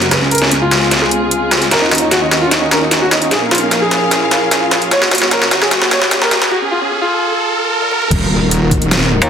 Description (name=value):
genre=heavy wobble dubstep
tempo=150 BPM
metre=4/4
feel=half-time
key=Eb minor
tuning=A4 = 440 Hz
part: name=clear concert grand piano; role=melody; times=0.0-8.0 s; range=Bb3 to Db5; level=-16 LUFS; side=equal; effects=low-pass filter, digital delay
part: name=rich studio string section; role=sustained chords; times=0.0-9.3 s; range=Db2 to F5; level=-19 LUFS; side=equal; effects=sidechain pumping, low-pass filter
part: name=dubstep drum kit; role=drums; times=0.0-9.3 s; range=crash cymbal, hi-hat, rim click, snare drum, toms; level=-14 LUFS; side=equal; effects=overdrive, high-pass filter on snare, high-pass filter on hats, high-pass filter on toms, high-pass filter on cymbals, high-pass filter on room
part: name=riser and impact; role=sound effects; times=0.1-9.3 s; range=none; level=-20 LUFS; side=right 1 dB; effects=none
part: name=wobble bass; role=bass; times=8.1-9.2 s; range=Eb1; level=-14 LUFS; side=equal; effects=chorus, overdrive
part: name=electronic kick drum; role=drums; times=8.1-8.8 s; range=none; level=-16 LUFS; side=equal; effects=none
part: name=metallic wobble bass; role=bass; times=9.2-9.3 s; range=Eb2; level=-10 LUFS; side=equal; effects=chorus, overdrive
room=wet plate reverb, RT60 1.5 s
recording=dense, heavily limited modern master, high-pass filter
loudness=-11 LUFS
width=side -8 dB against mid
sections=0.0-8.1 A section; 8.1-9.3 B section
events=build-up 0.0-8.1; drum fill 0.0-6.5, 7.8-8.1; riser 0.1-8.1; break 6.5-8.1; drop 8.1-9.3; impact 8.1-9.3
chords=0.1 Db; 1.7 Ebm7; 3.3 Bbm; 4.9 Gb; 6.5 N.C.; 8.1 Ebmadd9